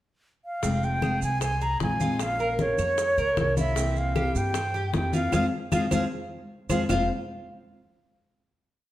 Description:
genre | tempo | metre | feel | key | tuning
latin, Cuban son and guajira | 153 BPM | 4/4 | straight | F harmonic minor | A4 = 439 Hz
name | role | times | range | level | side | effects
concert flute | melody | 0.4-6.8 s | Db5 to Bb5 | -28 LUFS | right 1 dB | none
nylon-string guitar | accompaniment | 0.6-7.1 s | F2 to F4 | -31 LUFS | left 3 dB | none
Cuban tres | arpeggios | 0.6-7.1 s | C4 to F5 | -32 LUFS | equal | none
upright bass | bass | 0.6-7.1 s | F1 to G2 | -30 LUFS | right 1 dB | none
bongos | percussion | 0.6-7.0 s | none | -36 LUFS | left 4 dB | none
congas | percussion | 0.6-7.0 s | none | -32 LUFS | left 1 dB | none
maracas | percussion | 0.6-7.0 s | none | -41 LUFS | right 9 dB | none
claves | percussion | 1.0-7.0 s | none | -41 LUFS | right 5 dB | none
room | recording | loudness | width
wet large studio reverb, RT60 1.4 s | none | -23 LUFS | side -14 dB against mid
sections
0.0-0.6 pickup bar; 0.6-6.9 A section; 6.9-8.5 final chord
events
band accent 5.3-6.9; drum fill 5.7-6.9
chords
0.0 N.C.; 0.6 Fm; 2.2 Bbm; 3.8 C7; 5.3 Fm; 6.9 F5

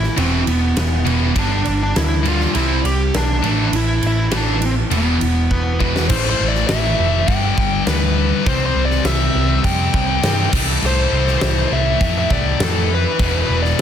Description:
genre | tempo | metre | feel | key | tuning
hard rock | 101 BPM | 4/4 | straight | A minor | A4 = 440 Hz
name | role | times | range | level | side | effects
dark smooth lead guitar | melody | 0.0-13.8 s | B3 to G5 | -22 LUFS | equal | overdrive, slapback echo
distorted electric guitar | riff | 0.0-13.8 s | E2 to C4 | -25 LUFS | equal | distortion
overdriven picked electric bass | bass | 0.0-13.7 s | E1 to G2 | -19 LUFS | equal | none
big rock drum kit | drums | 0.0-13.8 s | crash cymbal, kick drum, ride cymbal, snare drum | -22 LUFS | right 1 dB | soft clipping on snare
heavy high-gain guitar | riff | 0.2-6.0 s | E2 to C4 | -26 LUFS | right 13 dB | distortion
scooped high-gain guitar | riff | 0.2-13.8 s | E2 to C4 | -22 LUFS | left 12 dB | distortion
room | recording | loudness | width
small room ambience | dense, heavily limited modern master | -15 LUFS | side -9 dB against mid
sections
0.0-6.1 A section; 6.1-13.8 B section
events
drum fill 5.5-6.1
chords
0.2 E5; 1.4 G5; 2.5 C5; 3.4 A5; 4.9 E5; 6.1 A5; 7.3 G; 8.5 C; 10.5 Am/C; 13.2 E5

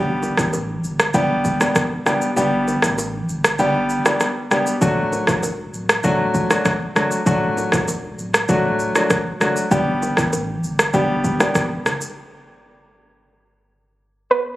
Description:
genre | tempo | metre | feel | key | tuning
afrobeats | 98 BPM | 4/4 | straight | unclear | A4 = 439 Hz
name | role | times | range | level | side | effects
clear baby grand piano | accompaniment | 0.0-11.6 s | F#3 to G4 | -20 LUFS | left 1 dB | none
warm sub bass | bass | 0.0-11.3 s | D1 to A1 | -27 LUFS | equal | none
afro-pop drum kit | drums | 0.2-12.1 s | kick drum, rim click, shaker | -20 LUFS | equal | none
bongos and congas | percussion | 0.2-12.0 s | none | -28 LUFS | right 2 dB | none
soft round pluck | melody | 14.3-14.6 s | B4 | -16 LUFS | right 2 dB | chorus
room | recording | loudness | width
light reverb | recorded on a phone in the room, club reverb, compression | -17 LUFS | side -16 dB against mid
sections
0.0-14.6 A section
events
kick muted 2.4-4.8; break 12.2-14.6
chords
0.0 G; 4.8 D; 9.7 G

